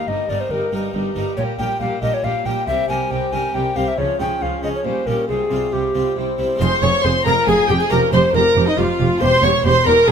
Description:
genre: classical, baroque-style concerto movement with solo episodes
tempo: 138 BPM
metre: 3/4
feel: straight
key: F minor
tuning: A4 = 440 Hz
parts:
  - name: mellow hollow tenor recorder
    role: melody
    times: 0.0-10.1 s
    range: Eb4 to Ab5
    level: -20 LUFS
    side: left 2 dB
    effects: none
  - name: warm chamber violin section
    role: melody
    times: 0.0-10.1 s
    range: E4 to Db6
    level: -25 LUFS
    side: left 2 dB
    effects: none
  - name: warm chamber violin section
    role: second line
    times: 0.0-10.1 s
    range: C4 to Db5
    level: -23 LUFS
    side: equal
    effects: none
  - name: dark chamber viola section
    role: accompaniment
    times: 0.0-10.1 s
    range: F3 to Ab4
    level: -27 LUFS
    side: right 1 dB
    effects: none
  - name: harpsichord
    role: accompaniment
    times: 0.0-10.1 s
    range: E2 to Bb4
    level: -27 LUFS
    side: left 1 dB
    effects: none
  - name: dark chamber cello section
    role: bass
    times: 0.1-10.1 s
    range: E2 to Db3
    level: -25 LUFS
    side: right 3 dB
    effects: none
  - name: rich chamber double bass section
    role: bass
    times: 0.1-10.1 s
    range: E1 to Db2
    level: -24 LUFS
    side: right 4 dB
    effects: none
room: light reverb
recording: close, detailed microphones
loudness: -16 LUFS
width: side -7 dB against mid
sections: 0.0-6.6 A section; 6.6-10.1 B section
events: none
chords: 0.1 Eb/G; 1.4 Bb5; 2.7 C5; 4.0 Db; 4.8 Gdim/Bb; 5.3 Csus4; 6.2 C; 6.6 Fm; 7.9 Eb13/F; 9.2 C/E

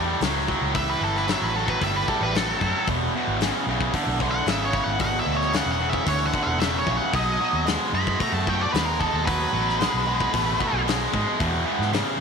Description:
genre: blues rock power trio and southern rock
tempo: 113 BPM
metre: 4/4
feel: straight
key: E mixolydian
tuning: A4 = 440 Hz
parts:
  - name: tight distorted guitar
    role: riff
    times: 0.0-12.2 s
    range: E2 to A3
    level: -24 LUFS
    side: right 1 dB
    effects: distortion
  - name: vintage muted fingered electric bass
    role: bass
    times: 0.0-12.0 s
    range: E1 to G#2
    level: -28 LUFS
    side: right 1 dB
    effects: none
  - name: big rock drum kit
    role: drums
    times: 0.2-12.1 s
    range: hi-hat, kick drum, snare drum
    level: -29 LUFS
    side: left 4 dB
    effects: none
  - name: octave-fuzz lead guitar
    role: melody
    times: 0.8-10.8 s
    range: A4 to B5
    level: -27 LUFS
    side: equal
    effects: distortion, tape echo
room: light reverb, small room ambience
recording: 1960s-style stereo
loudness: -21 LUFS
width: side -6 dB against mid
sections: 0.0-12.2 A section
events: none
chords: 0.0 A7; 2.9 E7; 7.1 B7; 11.4 E

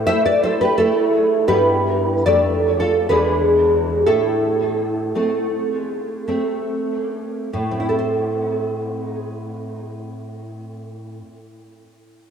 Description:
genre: romantic piece for solo classical guitar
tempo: 46-88 BPM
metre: 3/4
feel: rubato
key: A minor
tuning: A4 = 440 Hz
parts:
  - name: nylon-string guitar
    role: solo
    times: 0.0-11.7 s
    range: E2 to E5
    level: -17 LUFS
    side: equal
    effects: analog chorus, diffuse ambient delay
room: wet plate reverb, RT60 3.4 s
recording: dreamy mix soaked in reverb, cassette tape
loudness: -17 LUFS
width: side -7 dB against mid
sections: 0.0-7.5 A section; 7.5-11.3 B section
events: slowing down 0.4-7.5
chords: 0.0 Am; 1.5 Em/G; 2.3 Dm/F; 3.1 E7; 4.1 Am

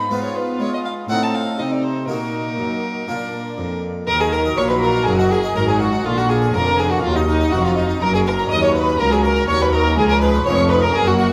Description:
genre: classical, baroque-style concerto movement with solo episodes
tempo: 122 BPM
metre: 4/4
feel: straight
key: Eb minor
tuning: A4 = 444 Hz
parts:
  - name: dark chamber violin section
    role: melody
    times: 0.0-11.3 s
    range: F4 to Eb6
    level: -29 LUFS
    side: equal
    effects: none
  - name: warm violin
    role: melody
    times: 0.0-11.3 s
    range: Eb4 to Cb6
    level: -25 LUFS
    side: equal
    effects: none
  - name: rich chamber violin section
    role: second line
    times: 0.0-11.3 s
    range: D4 to Eb5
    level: -25 LUFS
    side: equal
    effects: none
  - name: dark chamber viola section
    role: accompaniment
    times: 0.0-11.3 s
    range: D3 to C4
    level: -27 LUFS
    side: equal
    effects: none
  - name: harpsichord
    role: accompaniment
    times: 0.0-11.3 s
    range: Db2 to Eb5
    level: -28 LUFS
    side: equal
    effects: none
  - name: rich chamber cello section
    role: bass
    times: 0.0-11.3 s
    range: Db2 to Ab3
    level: -25 LUFS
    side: equal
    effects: none
  - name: warm studio double bass section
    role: bass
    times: 4.1-11.3 s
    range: F1 to Eb2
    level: -26 LUFS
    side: equal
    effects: none
room: wet recital hall reverb, RT60 1.5 s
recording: none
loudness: -18 LUFS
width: mono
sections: 0.0-4.1 A section; 4.1-11.3 B section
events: none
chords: 0.1 Fdim/Ab; 1.1 Adim; 2.1 Ebm/Bb; 3.1 Bb; 4.1 Ebm; 6.1 Bb; 7.0 Ebm; 8.0 Gb; 10.0 Db

